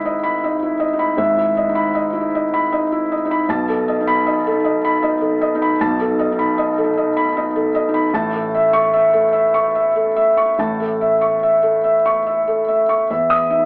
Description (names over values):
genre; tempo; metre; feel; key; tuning
neoclassical minimalist piano; 70-80 BPM; 3/4; rubato; E major; A4 = 440 Hz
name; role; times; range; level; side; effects
felt-muted upright piano; solo; 0.0-13.7 s; G#1 to D#6; -18 LUFS; equal; none
room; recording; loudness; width
wet booth ambience, RT60 0.2 s; heard from further back in the room, AM radio sound; -18 LUFS; mono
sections
0.0-13.1 A section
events
none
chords
0.0 Emaj7/G#; 3.5 B7; 8.1 A; 13.1 Emaj7(no3)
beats
0.42 | 1.19 1.95 2.71 | 3.47 4.24 5.00 | 5.77 6.54 7.33 | 8.12 8.92 9.73 | 10.57 11.41 12.25 | 13.08